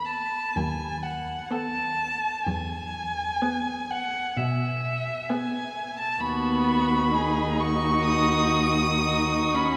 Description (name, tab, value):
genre	classical, slow romantic movement for string quartet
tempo	60-66 BPM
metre	4/4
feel	rubato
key	E major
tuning	A4 = 440 Hz
part	warm violin	melody	0.0-9.8 s	E5 to D#6	-30 LUFS	equal	none
part	rich violin	second line	0.0-9.8 s	F#4 to A4	-32 LUFS	equal	none
part	rich viola	accompaniment	0.0-9.8 s	B3 to D#4	-32 LUFS	equal	none
part	warm cello	bass	0.6-9.8 s	D#2 to B2	-31 LUFS	equal	none
room	wet cathedral reverb, RT60 4.4 s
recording	recorded in a church or concert hall, faint mains hum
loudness	-26 LUFS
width	mono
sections	0.0-9.8 A section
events	none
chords	0.0 B7/D#; 2.5 E; 6.2 B/D#